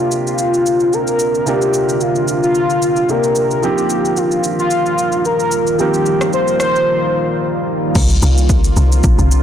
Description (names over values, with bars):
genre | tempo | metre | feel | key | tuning
amapiano | 111 BPM | 4/4 | swing 55% on 16ths | C minor | A4 = 440 Hz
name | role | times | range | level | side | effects
warm velvety synth lead | melody | 0.0-7.4 s | F4 to C5 | -15 LUFS | left 1 dB | chorus, digital delay
warm baby grand piano | accompaniment | 0.0-8.0 s | C3 to Bb4 | -21 LUFS | right 3 dB | none
deep dark ambient pad | sustained chords | 0.1-9.4 s | D3 to F4 | -21 LUFS | equal | chorus, built-in reverb, sidechain pumping
deep house drum kit | drums | 0.1-9.4 s | crash cymbal, kick drum, rim click, shaker | -19 LUFS | equal | overdrive
deep log drum bass | bass | 8.0-9.4 s | Bb1 to C2 | -12 LUFS | equal | none
room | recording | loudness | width
light reverb | blown-out, overdriven recording, overdrive | -13 LUFS | side -9 dB against mid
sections
0.0-8.0 A section; 8.0-9.4 B section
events
break 6.9-8.0; drop 8.0-9.4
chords
0.0 C9sus4; 3.6 F9sus4; 8.0 C9sus4